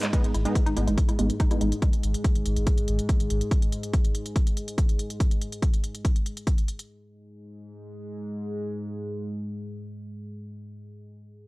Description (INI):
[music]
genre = driving peak-time techno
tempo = 142 BPM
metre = 4/4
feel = straight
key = G# minor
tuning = A4 = 440 Hz
[part]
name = woody wave-folded pluck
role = riff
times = 0.0-1.7 s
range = G#3 to E4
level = -32 LUFS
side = right 2 dB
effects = chorus, tube saturation, sidechain pumping, tape echo
[part]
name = analog drone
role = drone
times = 0.0-10.3 s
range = G#2 to G#3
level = -34 LUFS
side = equal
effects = chorus, sidechain pumping
[part]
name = techno drum kit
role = drums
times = 0.0-6.9 s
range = handclaps, hi-hat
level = -36 LUFS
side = equal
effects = overdrive, sidechain pumping on hats, sidechain pumping on cymbals
[part]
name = rave stab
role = stabs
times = 0.1-1.7 s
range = G#3 to D#4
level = -31 LUFS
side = right 1 dB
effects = chorus, built-in reverb, sidechain pumping, tape echo
[part]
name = electronic kick drum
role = drums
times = 0.1-6.6 s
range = none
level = -23 LUFS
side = equal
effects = overdrive
[part]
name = warm sub bass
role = bass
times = 0.2-3.4 s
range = G#1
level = -27 LUFS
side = equal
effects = overdrive, sidechain pumping, low-pass filter
[sound]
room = light reverb, digital ambience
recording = dry, gritty hardware recording, cassette tape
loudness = -23 LUFS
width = side -22 dB against mid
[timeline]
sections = 0.1-6.9 A section; 6.9-10.3 B section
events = filter sweep on synth stab 0.1-1.8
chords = 0.1 G#m; 6.9 N.C.